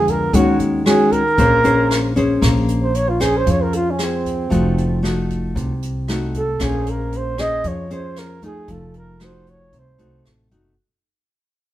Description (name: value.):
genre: bossa nova.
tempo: 115 BPM.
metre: 4/4.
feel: straight.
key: Bb minor.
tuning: A4 = 438 Hz.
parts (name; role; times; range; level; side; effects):
breathy flugelhorn; melody; 0.0-10.3 s; C4 to Eb5; -20 LUFS; right 2 dB; none.
nylon-string guitar; accompaniment; 0.0-10.7 s; C3 to C5; -20 LUFS; left 2 dB; none.
upright bass; bass; 0.0-10.7 s; F1 to F2; -22 LUFS; equal; none.
jazz brush drum kit; drums; 0.1-10.6 s; hi-hat, kick drum, rim click; -25 LUFS; equal; none.
room: moderate stone room reverb, RT60 1.0 s.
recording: band playing live in one room.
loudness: -15 LUFS.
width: side -14 dB against mid.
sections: 0.0-2.4 A section; 2.4-10.8 B section.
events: fade-out 2.4-10.8; flugelhorn solo 2.4-10.8.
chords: 0.3 Ebm7; 1.4 Bbm9; 4.5 F7b9; 6.6 Bbm9; 8.7 F7b9.